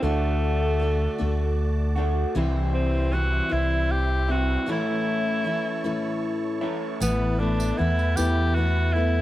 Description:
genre	folk rock and heartland rock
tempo	52 BPM (dotted quarters)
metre	6/8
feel	straight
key	unclear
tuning	A4 = 440 Hz
part	bright tenor saxophone	melody	0.0-9.2 s	A3 to G4	-28 LUFS	equal	none
part	picked steel-string acoustic guitar	accompaniment	0.0-9.2 s	A2 to F#4	-29 LUFS	left 3 dB	none
part	musette accordion	sustained chords	0.0-9.2 s	E4 to D6	-38 LUFS	right 4 dB	none
part	electric guitar through a small old amp	riff	0.0-9.2 s	A2 to F#4	-30 LUFS	equal	none
part	fingered electric bass	bass	0.0-9.2 s	A1 to E2	-24 LUFS	equal	none
part	tambourine	percussion	7.0-8.4 s	none	-35 LUFS	right 6 dB	none
room	studio reverb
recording	dark, warm production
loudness	-22 LUFS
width	side -15 dB against mid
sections	0.0-7.0 A section; 7.0-9.2 B section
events	break 4.7-7.0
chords	0.0 D; 2.4 C; 4.7 A; 7.0 Asus2

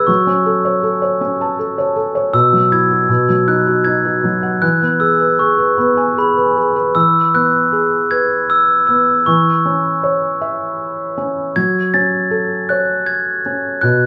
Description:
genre	children's music, lullaby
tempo	79 BPM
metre	3/4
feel	rubato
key	E major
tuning	A4 = 440 Hz
part	glockenspiel with rubber mallets	melody	0.0-14.1 s	B5 to A6	-17 LUFS	equal	none
part	felt-muted upright piano	accompaniment	0.0-14.1 s	B2 to B5	-19 LUFS	equal	none
room	moderate large studio reverb, RT60 0.9 s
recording	band playing live in one room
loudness	-15 LUFS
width	mono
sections	0.0-7.0 A section; 7.0-14.1 A section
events	none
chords	0.1 F#m; 2.3 Bsus4; 3.1 B; 4.6 E; 9.3 C#m/E; 11.6 F#madd9

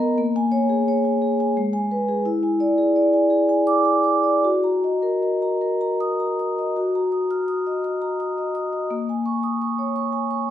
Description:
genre	classical, contemporary piece for solo vibraphone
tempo	75-87 BPM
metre	3/4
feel	rubato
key	F# major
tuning	A4 = 440 Hz
part	vibraphone with soft mallets	solo	0.0-10.5 s	G#3 to E#6	-19 LUFS	equal	none
room	wet recital hall reverb, RT60 1.6 s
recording	none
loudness	-19 LUFS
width	side -11 dB against mid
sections	0.0-6.8 A section; 6.8-10.5 B section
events	none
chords	0.2 A#m7; 1.6 G#m; 2.3 E7; 4.4 F#6; 8.9 A#m7

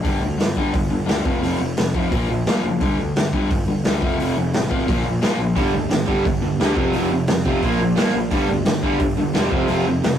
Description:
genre	punk rock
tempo	174 BPM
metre	4/4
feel	straight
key	G minor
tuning	A4 = 440 Hz
part	overdriven semi-hollow guitar	riff	0.0-10.2 s	F2 to Bb3	-22 LUFS	left 2 dB	none
part	fuzz picked electric bass	bass	0.0-10.2 s	E1 to G2	-26 LUFS	equal	overdrive
part	raw garage drum kit	drums	0.0-10.1 s	hi-hat, kick drum, snare drum	-22 LUFS	equal	none
part	cranked stack guitar	riff	5.6-10.2 s	F2 to Bb3	-22 LUFS	right 4 dB	overdrive
room	moderate studio reverb, RT60 0.6 s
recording	rough rehearsal-room recording, warm saturation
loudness	-17 LUFS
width	side -9 dB against mid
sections	0.0-10.2 A section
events	none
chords	0.0 G5; 1.3 F5; 2.1 Bb5; 2.8 G5; 4.0 F; 4.9 Bb5; 5.6 G5; 6.8 F5; 7.6 Bb5; 8.3 G5; 9.5 F5

